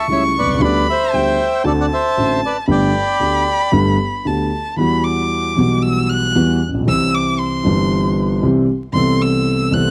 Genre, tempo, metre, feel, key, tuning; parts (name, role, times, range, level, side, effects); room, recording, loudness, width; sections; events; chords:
tango; 116 BPM; 4/4; rubato; G major, E minor from 4.8 s; A4 = 440 Hz
bandoneon; melody; 0.0-3.7 s; A4 to G5; -21 LUFS; equal
warm violin; second line; 0.0-9.9 s; G5 to F#6; -23 LUFS; equal
dark grand piano; accompaniment; 0.1-9.9 s; G1 to A4; -18 LUFS; equal
little or no reverb; dry, close 1970s-style studio recording, vinyl crackle; -17 LUFS; mono
0.0-4.8 A section; 4.8-9.9 B section
violin solo 4.8-9.9
0.0 A7/C#; 0.6 G/D; 1.6 D7; 2.7 Gadd9; 4.8 Emadd9; 6.9 C; 9.0 Amadd9/C